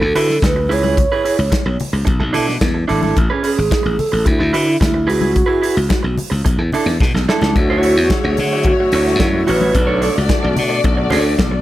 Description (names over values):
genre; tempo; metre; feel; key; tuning
disco; 109 BPM; 4/4; straight; unclear; A4 = 440 Hz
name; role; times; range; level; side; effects
breathy mellow wooden-headed alto flute; melody; 0.0-10.0 s; E4 to C#5; -18 LUFS; right 2 dB; none
electric guitar through a small old amp; accompaniment; 0.0-11.5 s; C#4 to C#5; -21 LUFS; right 3 dB; none
glassy slap bass; bass; 0.0-11.6 s; G#1 to D3; -18 LUFS; equal; none
modern studio drum kit; drums; 0.2-11.5 s; hi-hat, kick drum, snare drum; -19 LUFS; equal; none
congas; percussion; 0.4-11.5 s; none; -26 LUFS; left 5 dB; none
warm studio string section; second line; 7.5-11.6 s; A3 to D5; -22 LUFS; left 4 dB; none
tonewheel organ; sustained chords; 7.5-11.6 s; D3 to E4; -26 LUFS; left 2 dB; slow rotary speaker
room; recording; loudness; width
light reverb; none; -13 LUFS; side -14 dB against mid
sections
0.0-7.5 A section; 7.5-11.6 B section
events
drum fill 7.0-7.5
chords
0.0 D69; 0.7 C#m7; 2.1 Bm7; 3.2 Amaj9; 4.3 D69; 5.1 C#m7; 6.5 Bm11; 7.5 Dmaj9; 9.7 Bm9